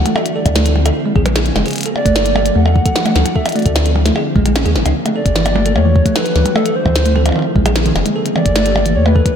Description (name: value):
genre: IDM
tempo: 150 BPM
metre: 4/4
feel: straight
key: unclear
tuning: A4 = 440 Hz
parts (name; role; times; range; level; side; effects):
- warbly nostalgic lead; melody; 0.0-9.4 s; A4 to F#5; -20 LUFS; right 1 dB; chorus, analog delay
- glassy FM pad; sustained chords; 0.0-9.4 s; Bb3 to C4; -20 LUFS; left 1 dB; ensemble chorus, built-in reverb, vintage 12-bit sampler grit
- round analog bass; bass; 0.0-9.2 s; F1 to E2; -15 LUFS; equal; none
- bell-like tine electric piano; arpeggios; 0.1-9.2 s; D#3 to A4; -20 LUFS; right 2 dB; analog delay
- glitchy drum kit; drums; 0.1-9.3 s; hi-hat, percussion blips, snare drum; -19 LUFS; equal; analog delay
- electronic kick drum; drums; 0.5-9.3 s; none; -15 LUFS; equal; none
room: moderate lush hall reverb, RT60 1.8 s, digital ambience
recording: dreamy mix soaked in reverb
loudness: -12 LUFS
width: side -8 dB against mid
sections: 0.0-9.4 A section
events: none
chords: 0.2 Dm9; 1.0 Bbm9; 1.8 Gm9; 2.6 Em9; 3.4 Dm9; 4.2 Bbm9; 5.0 Gm9; 5.8 Em9; 6.6 Dm9; 7.4 Bbm9; 8.2 Gm9